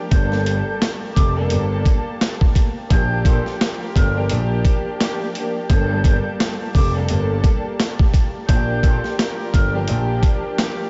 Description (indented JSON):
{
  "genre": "hip hop, boom-bap hip-hop",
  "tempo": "86 BPM",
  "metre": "4/4",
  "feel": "swing 58% on 16ths",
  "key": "G minor",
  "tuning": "A4 = 443 Hz",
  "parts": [
    { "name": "warm studio string section", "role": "accompaniment", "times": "0.0-10.9 s", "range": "F3 to A4", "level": "-29 LUFS", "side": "equal", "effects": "cassette tape, high-pass filter, low-pass filter" },
    { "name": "warm analog pad", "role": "sustained chords", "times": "0.0-10.9 s", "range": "Bb3 to A5", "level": "-34 LUFS", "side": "equal", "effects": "chorus, tremolo, high-pass filter, low-pass filter" },
    { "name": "breathy mellow jazz flute", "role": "melody", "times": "0.1-9.7 s", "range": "D6 to G6", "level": "-32 LUFS", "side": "equal", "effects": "high-pass filter, low-pass filter, tape echo" },
    { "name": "dark grand piano", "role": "bass", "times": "0.1-10.2 s", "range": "F1 to Bb1", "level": "-24 LUFS", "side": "equal", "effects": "none" },
    { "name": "boom bap sampler-style drum kit", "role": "drums", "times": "0.1-10.8 s", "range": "hi-hat, kick drum, snare drum", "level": "-20 LUFS", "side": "equal", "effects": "none" },
    { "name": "warm horn section", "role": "stabs", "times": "3.3-10.9 s", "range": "Bb3 to C5", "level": "-35 LUFS", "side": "equal", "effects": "high-pass filter, low-pass filter, tape echo" }
  ],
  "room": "light reverb, studio reverb",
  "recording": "nothing above 7.7 kHz",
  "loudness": "-19 LUFS",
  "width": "mono",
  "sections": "0.0-10.9 A section",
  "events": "none",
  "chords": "0.1 Gmadd9; 2.9 Bb6; 5.7 Gmadd9; 8.5 Bb6"
}